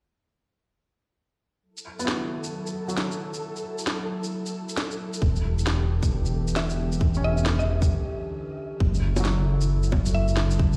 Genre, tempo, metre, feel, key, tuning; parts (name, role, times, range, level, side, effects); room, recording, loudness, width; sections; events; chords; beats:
future garage; 134 BPM; 4/4; swing 61% on 16ths; A4 = 440 Hz
warbly tape-like pad; sustained chords; 2.0-10.8 s; D3 to A4; -36 LUFS; equal; chorus, built-in reverb, vintage 12-bit sampler grit, sidechain pumping
flickering grainy texture; texture; 2.0-7.9 s; A4; -45 LUFS; equal; built-in reverb
electronic shaker, snare drum and bongos; drums; 1.8-10.8 s; -34 LUFS; equal
felt-muted upright piano; accompaniment; 2.0-10.8 s; F#3 to F#4; -37 LUFS; equal; sidechain pumping, low-pass filter, delay
dark detuned saw bass; bass; 5.2-10.8 s; E1 to F#1; -26 LUFS; equal
electronic kick drum; drums; 5.2-10.7 s; -25 LUFS; equal
mallet-like synth pluck; melody; 6.6-10.4 s; E5; -36 LUFS; equal; chorus, dub echo
little or no reverb; played on a big sound system in a bare room, large studio reverb, lossy compression artefacts; -26 LUFS; mono
1.6-8.8 A section; 8.8-10.8 B section
break 7.9-8.8
1.6 F#m7; 5.2 Em7; 8.8 F#m7
| 1.64 2.08 2.53 2.98 | 3.43 3.88 4.32 4.77 | 5.22 5.67 6.11 6.56 | 7.01 7.46 7.91 8.35 | 8.80 9.25 9.70 10.14 | 10.59